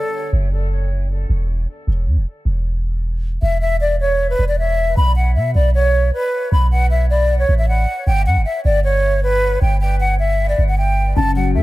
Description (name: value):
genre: hip hop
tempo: 155 BPM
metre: 4/4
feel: half-time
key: unclear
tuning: A4 = 440 Hz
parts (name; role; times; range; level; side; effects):
- breathy concert flute; melody; 0.0-0.3, 3.4-11.6 s; A4 to B5; -19 LUFS; equal; tape echo
- clean 808-style bass; bass; 0.3-11.6 s; E1 to B2; -16 LUFS; equal; none
- dark grand piano; accompaniment; 11.2-11.6 s; C#3 to A3; -22 LUFS; left 7 dB; none
room: light reverb, small room reverb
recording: echo-heavy mix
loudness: -15 LUFS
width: side -17 dB against mid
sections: 0.0-11.6 A section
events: none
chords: 0.0 N.C.; 1.9 E5; 5.0 B5; 8.1 N.C.